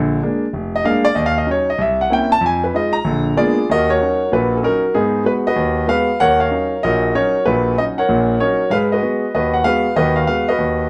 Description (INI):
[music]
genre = jazz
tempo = 191 BPM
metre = 4/4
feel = swing 64% on 8ths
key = Eb minor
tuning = A4 = 440 Hz
[part]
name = warm concert grand piano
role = solo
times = 0.0-10.9 s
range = F1 to Bb5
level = -17 LUFS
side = equal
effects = none
[sound]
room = wet studio reverb, RT60 0.6 s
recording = band playing live in one room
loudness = -17 LUFS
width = mono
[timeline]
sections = 0.0-3.7 A section; 3.7-10.9 B section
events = grand piano solo 0.0-3.7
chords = 0.0 Bb7; 1.2 Ebm7; 1.8 C7b9; 2.4 Fm7b5; 3.1 Bb7b9; 3.7 Ebm7; 4.9 Abm7; 6.2 Ebm7; 8.7 Abm7